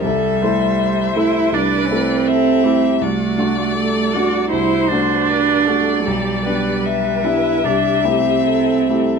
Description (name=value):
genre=classical, slow romantic movement for piano quartet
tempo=67-81 BPM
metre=4/4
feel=rubato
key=unclear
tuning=A4 = 439 Hz
part: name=rich violin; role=melody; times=0.0-9.2 s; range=C5 to E5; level=-21 LUFS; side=left 12 dB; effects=none
part: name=warm cello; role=second line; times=0.0-9.2 s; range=G3 to F#4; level=-18 LUFS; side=right 7 dB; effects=none
part: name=clear grand piano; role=accompaniment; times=0.0-9.2 s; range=B1 to A4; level=-21 LUFS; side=left 3 dB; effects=none
part: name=rich viola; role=accompaniment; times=0.0-9.2 s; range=F#4 to D5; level=-25 LUFS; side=right 1 dB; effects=none
room=light reverb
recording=close, detailed microphones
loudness=-14 LUFS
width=side -5 dB against mid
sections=0.0-9.2 A section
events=none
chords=0.1 Am7/C; 3.0 D7/C; 6.1 G/B; 7.6 Am7/C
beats=| 0.05 0.79 1.53 2.27 | 3.02 3.77 4.52 5.29 | 6.06 6.85 7.64 8.46